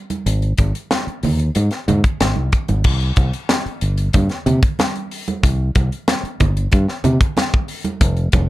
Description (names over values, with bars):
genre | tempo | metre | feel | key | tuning
funk | 93 BPM | 4/4 | straight | C minor | A4 = 437 Hz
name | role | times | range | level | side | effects
crisp fusion drum kit | drums | 0.1-8.5 s | crash cymbal, hi-hat, kick drum, snare drum | -18 LUFS | equal | none
congas | percussion | 0.1-8.5 s | none | -25 LUFS | right 4 dB | none
fingered electric bass | bass | 0.3-8.5 s | F1 to C3 | -17 LUFS | equal | none
room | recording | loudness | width
little or no reverb | none | -16 LUFS | side -17 dB against mid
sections
0.0-2.9 A section; 2.9-8.5 B section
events
none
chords
none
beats
| 0.26 0.91 1.56 2.20 | 2.85 3.50 4.14 4.79 | 5.43 6.08 6.72 7.37 | 8.02